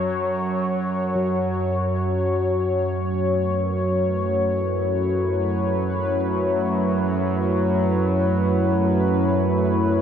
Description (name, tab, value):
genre	dark ambient drone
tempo	free time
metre	none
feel	none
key	unclear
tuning	A4 = 441 Hz
part	sweeping resonant pad	sustained chords	0.0-10.0 s	F#2 to A5	-22 LUFS	left 1 dB	chorus
part	analog drone	drone	0.0-10.0 s	F#2 to F#3	-23 LUFS	right 1 dB	chorus
part	quartz singing bowl	texture	1.2-10.0 s	F#3 to F#4	-31 LUFS	left 2 dB	none
room	wet cathedral reverb, RT60 7.1 s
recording	cassette tape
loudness	-20 LUFS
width	side -8 dB against mid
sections	0.0-10.0 A section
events	none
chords	0.0 F#m; 1.2 A/F#